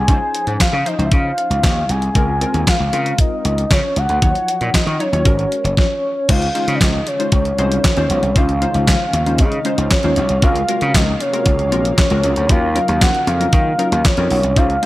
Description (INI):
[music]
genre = early-eighties boogie funk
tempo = 116 BPM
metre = 4/4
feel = straight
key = Db major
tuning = A4 = 442 Hz
[part]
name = soft octave-layered synth lead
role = melody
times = 0.0-14.9 s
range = Db5 to Ab5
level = -19 LUFS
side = equal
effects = chorus, tremolo
[part]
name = gritty slap bass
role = bass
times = 0.0-14.8 s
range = Gb1 to Eb3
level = -19 LUFS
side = equal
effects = overdrive
[part]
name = funky polysynth comp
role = accompaniment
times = 0.1-14.9 s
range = F3 to Db5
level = -23 LUFS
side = left 2 dB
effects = chorus
[part]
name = crisp 8-bit digital drum machine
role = drums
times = 0.1-14.9 s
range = crash cymbal, handclaps, hi-hat, kick drum, snare drum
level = -16 LUFS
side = equal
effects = gated reverb
[part]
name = warm analog pad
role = sustained chords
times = 6.3-14.9 s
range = C3 to F5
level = -29 LUFS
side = equal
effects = none
[sound]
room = digital ambience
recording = none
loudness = -14 LUFS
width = side -17 dB against mid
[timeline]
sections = 0.0-6.3 A section; 6.3-14.9 B section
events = none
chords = 0.0 Dbmaj9; 2.2 Dbmaj13; 4.2 Ebm9; 5.3 Ab9sus4; 6.3 Dbmaj9; 10.4 Gbmaj9#11/Db; 12.5 Ebm9